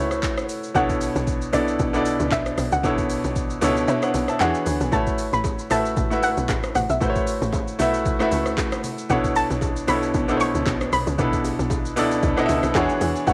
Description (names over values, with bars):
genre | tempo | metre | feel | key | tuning
amapiano | 115 BPM | 4/4 | swing 55% on 16ths | A major | A4 = 440 Hz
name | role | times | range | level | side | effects
soft round pluck | melody | 0.0-13.3 s | D5 to C#6 | -28 LUFS | equal | chorus, cassette tape, tape echo
bright baby grand piano | accompaniment | 0.0-13.3 s | B2 to A5 | -25 LUFS | equal | cassette tape
tight log drum bass | bass | 0.0-13.3 s | A1 to B2 | -29 LUFS | equal | none
afro-pop drum kit | drums | 0.1-13.3 s | handclaps, hi-hat, kick drum, rim click, shaker | -30 LUFS | equal | overdrive, cassette tape
congas and bongos | percussion | 4.9-13.3 s | none | -36 LUFS | equal | none
room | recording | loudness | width
light reverb | home recording on cassette | -22 LUFS | mono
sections
0.0-13.3 A section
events
kick muted 3.9-4.9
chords
0.0 A69; 0.8 Bm11; 4.4 E13; 4.9 A69; 9.1 Bm11; 12.8 E13